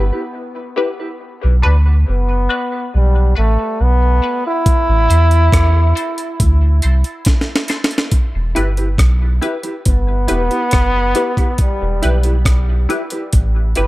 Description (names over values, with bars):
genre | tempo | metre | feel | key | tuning
dub reggae | 69 BPM | 4/4 | straight | E minor | A4 = 440 Hz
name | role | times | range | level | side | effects
warm trombone | melody | 0.0-12.4 s | G3 to E4 | -20 LUFS | equal | dub echo
filtered dub chord stab | stabs | 0.0-13.9 s | D4 to C5 | -24 LUFS | left 3 dB | phaser, high-pass filter, dub echo
soft dub sub bass | bass | 0.0-13.9 s | E1 to E2 | -13 LUFS | equal | none
mellow electric guitar | accompaniment | 0.1-13.9 s | C4 to B4 | -27 LUFS | right 2 dB | high-pass filter, dub echo
breakbeat sampler-style drum kit | drums | 4.7-13.9 s | hi-hat, kick drum, rim click, snare drum | -15 LUFS | equal | none
room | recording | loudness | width
little or no reverb | none | -13 LUFS | side -18 dB against mid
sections
0.0-8.1 A section; 8.1-13.9 B section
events
break 0.0-4.7; filter sweep 0.0-8.1; drum fill 7.3-8.1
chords
0.0 Em; 1.2 Bm; 4.7 Am; 8.1 Em